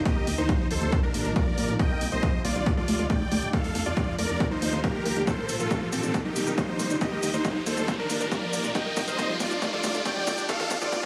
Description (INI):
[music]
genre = uplifting trance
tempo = 138 BPM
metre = 4/4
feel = straight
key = Bb major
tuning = A4 = 441 Hz
[part]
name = shimmering ambient pad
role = sustained chords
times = 0.0-11.1 s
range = C3 to F4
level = -38 LUFS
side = equal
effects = none
[part]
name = riser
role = sound effects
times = 1.9-11.1 s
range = none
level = -39 LUFS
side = equal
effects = none
[part]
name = dense compressed supersaw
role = melody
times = 0.1-11.1 s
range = C4 to G5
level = -32 LUFS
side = equal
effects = sidechain pumping, digital delay
[part]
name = unison pluck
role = arpeggios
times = 0.1-11.1 s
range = F3 to Bb4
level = -36 LUFS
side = equal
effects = subtle chorus, sidechain pumping, digital delay
[part]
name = electronic hi-hat and shaker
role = drums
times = 0.1-11.0 s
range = none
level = -38 LUFS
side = equal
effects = overdrive, sidechain pumping on hats, sidechain pumping on perc
[part]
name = electronic kick drum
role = drums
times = 0.1-11.1 s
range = none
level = -30 LUFS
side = equal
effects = overdrive
[part]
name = plucky analog bass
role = bass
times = 0.2-11.1 s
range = D1 to Bb2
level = -36 LUFS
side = equal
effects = sidechain pumping
[sound]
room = light reverb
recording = high-pass filter, small room ambience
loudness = -27 LUFS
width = mono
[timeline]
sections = 0.0-11.1 A section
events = build-up 0.0-11.1; filter sweep on synth pluck 0.0-11.1; filter sweep 0.0-11.1; riser 1.9-11.1; drum fill 5.3-11.1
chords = 0.1 Ebadd9; 0.9 Bbadd9; 1.8 Cm; 2.7 Dm7; 3.5 F; 4.4 Ebadd9; 5.3 Bbadd9; 6.1 Cm; 7.0 Ebadd9; 7.9 Bbadd9; 8.8 Cm; 9.6 Dm7; 10.5 F